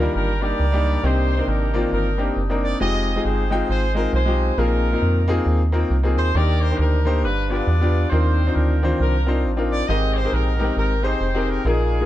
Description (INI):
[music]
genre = uptempo gospel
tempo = 136 BPM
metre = 4/4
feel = swing 60% on 8ths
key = unclear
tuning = A4 = 441 Hz
[part]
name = clear horn section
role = melody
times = 0.0-12.1 s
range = D4 to Eb5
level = -25 LUFS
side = equal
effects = none
[part]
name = clear baby grand piano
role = accompaniment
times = 0.0-12.1 s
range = G2 to G5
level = -23 LUFS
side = left 2 dB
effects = none
[part]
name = metallic FM bass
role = bass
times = 0.0-12.0 s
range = F1 to F2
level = -20 LUFS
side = equal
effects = none
[sound]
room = studio ambience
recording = dark, warm production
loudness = -18 LUFS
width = side -13 dB against mid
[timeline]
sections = 0.0-12.1 A section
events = none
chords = 0.0 Ebmaj7; 1.0 Cm9; 2.8 Fm9; 4.6 Bb9sus4; 6.3 Ebmaj7; 7.2 G7; 8.1 Cm11; 9.9 Abmaj9